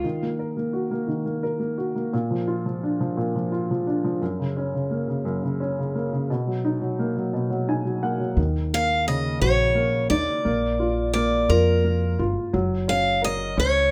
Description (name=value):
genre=acoustic folk-pop ballad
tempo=58 BPM (dotted quarters)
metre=6/8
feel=straight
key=Eb minor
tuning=A4 = 440 Hz
part: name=warm upright piano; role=accompaniment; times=0.0-13.9 s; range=Gb2 to Ab5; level=-27 LUFS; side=equal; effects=none
part: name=upright bass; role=bass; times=0.0, 8.4-13.9 s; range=Gb1 to F2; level=-27 LUFS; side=equal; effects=none
part: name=picked steel-string acoustic guitar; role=melody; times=8.7-13.9 s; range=Bb4 to F5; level=-24 LUFS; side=equal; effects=none
room=light reverb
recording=none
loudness=-24 LUFS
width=mono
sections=0.0-8.4 A section; 8.4-13.9 B section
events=none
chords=0.0 Ebm; 2.1 Bb; 4.2 Gb; 6.3 Bmaj7; 8.4 Ebm7; 10.5 Bb; 12.5 Gb